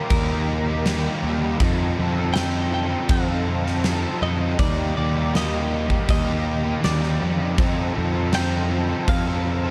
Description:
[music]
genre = rock, shoegaze and dream pop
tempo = 80 BPM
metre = 4/4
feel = straight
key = F mixolydian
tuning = A4 = 440 Hz
[part]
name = direct-recorded clean electric guitar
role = melody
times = 0.0-9.7 s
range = Bb4 to G5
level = -32 LUFS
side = equal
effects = digital delay
[part]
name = crunchy overdriven guitar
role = riff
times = 0.0-9.7 s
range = Eb3 to A4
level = -28 LUFS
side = equal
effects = analog chorus
[part]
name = fuzz picked electric bass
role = bass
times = 0.1-9.7 s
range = Eb2 to F2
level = -26 LUFS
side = equal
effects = overdrive
[part]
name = huge arena drum kit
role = drums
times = 0.1-9.3 s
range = crash cymbal, kick drum, snare drum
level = -27 LUFS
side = equal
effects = none
[sound]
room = studio ambience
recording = dark, warm production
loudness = -22 LUFS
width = mono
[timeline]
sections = 0.0-9.7 A section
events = none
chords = 0.0 Eb; 1.6 F7; 4.6 Eb; 7.6 F7

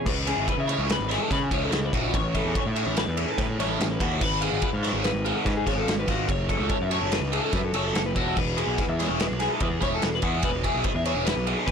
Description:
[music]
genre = math rock and midwest emo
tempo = 145 BPM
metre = 5/4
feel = straight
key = E major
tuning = A4 = 439 Hz
[part]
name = twelve-string electric guitar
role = accompaniment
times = 0.0-2.1 s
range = E3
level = -40 LUFS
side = right 8 dB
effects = none
[part]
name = twelve-string electric guitar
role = arpeggios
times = 0.0-11.7 s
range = F#4 to E#5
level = -30 LUFS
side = left 6 dB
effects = wide subtle chorus
[part]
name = fuzz picked electric bass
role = bass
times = 0.1-11.7 s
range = E1 to C#3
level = -28 LUFS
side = equal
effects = overdrive
[part]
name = loose indie drum kit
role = drums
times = 0.1-11.7 s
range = crash cymbal, kick drum, ride cymbal, snare drum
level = -28 LUFS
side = equal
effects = none
[part]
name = biting overdriven guitar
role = riff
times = 0.3-11.7 s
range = C#3 to A4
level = -29 LUFS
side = right 2 dB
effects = phaser
[sound]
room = little or no reverb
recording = blown-out, overdriven recording, overdrive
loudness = -23 LUFS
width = side -7 dB against mid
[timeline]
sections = 0.1-11.7 A section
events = none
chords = 0.1 C#m7; 2.1 A; 4.2 C#7/G#; 6.3 E6

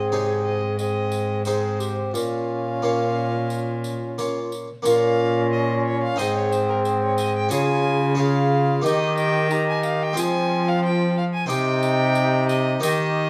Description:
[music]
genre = classical, renaissance-style consort dance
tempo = 90 BPM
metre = 4/4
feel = straight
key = Bb dorian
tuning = A4 = 441 Hz
[part]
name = rich violin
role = melody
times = 0.0-13.3 s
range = Bb4 to Bb5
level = -31 LUFS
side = equal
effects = none
[part]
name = mellow bass recorder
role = second line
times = 0.0-13.3 s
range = F4 to Ab4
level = -29 LUFS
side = equal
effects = none
[part]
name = bright trombone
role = accompaniment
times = 0.0-13.3 s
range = C4 to F4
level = -28 LUFS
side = equal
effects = none
[part]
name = harpsichord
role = accompaniment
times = 0.0-13.3 s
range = Ab2 to G5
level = -29 LUFS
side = equal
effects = none
[part]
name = rich cello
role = bass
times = 0.0-13.3 s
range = Ab2 to F3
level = -27 LUFS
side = equal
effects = none
[part]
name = tambourine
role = percussion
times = 0.8-13.1 s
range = none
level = -39 LUFS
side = equal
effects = none
[sound]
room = moderate stone room reverb, RT60 1.0 s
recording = none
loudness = -22 LUFS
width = mono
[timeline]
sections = 0.0-4.9 A section; 4.9-13.3 B section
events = none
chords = 0.0 Ab; 2.1 Bbm; 6.2 Ab; 7.5 Db; 8.8 Eb; 10.2 Fm; 11.5 Cm

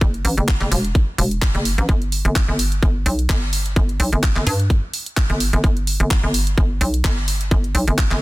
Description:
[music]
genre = bass house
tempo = 128 BPM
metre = 4/4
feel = swing 55% on 16ths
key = unclear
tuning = A4 = 441 Hz
[part]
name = hollow knocking FM bass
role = bass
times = 0.0-8.2 s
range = E1 to G2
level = -19 LUFS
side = equal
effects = tube saturation, sidechain pumping
[part]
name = electronic kick drum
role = drums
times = 0.0-8.1 s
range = none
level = -17 LUFS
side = equal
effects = studio reverb
[part]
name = garage drum kit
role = drums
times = 0.0-8.2 s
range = handclaps, hi-hat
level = -25 LUFS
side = equal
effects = studio reverb
[sound]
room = digital ambience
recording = dense, heavily limited modern master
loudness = -16 LUFS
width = side -20 dB against mid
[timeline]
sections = 0.0-8.2 A section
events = none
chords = none

